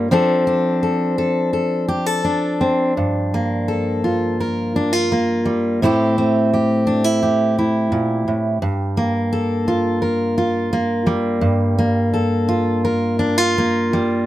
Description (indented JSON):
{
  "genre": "folk, solo fingerstyle acoustic guitar",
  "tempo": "85 BPM",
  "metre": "4/4",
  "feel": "rubato",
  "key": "G dorian",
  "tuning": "A4 = 440 Hz",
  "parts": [
    { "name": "fingerpicked steel-string acoustic guitar", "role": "solo", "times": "0.0-14.3 s", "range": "G2 to Bb4", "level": "-16 LUFS", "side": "equal", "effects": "none" }
  ],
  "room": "little or no reverb",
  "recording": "close, detailed microphones",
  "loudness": "-16 LUFS",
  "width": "side -14 dB against mid",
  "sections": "0.0-14.3 A section",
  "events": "none",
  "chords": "0.1 F6; 3.0 Gm7; 5.8 Am7; 8.6 Gm7"
}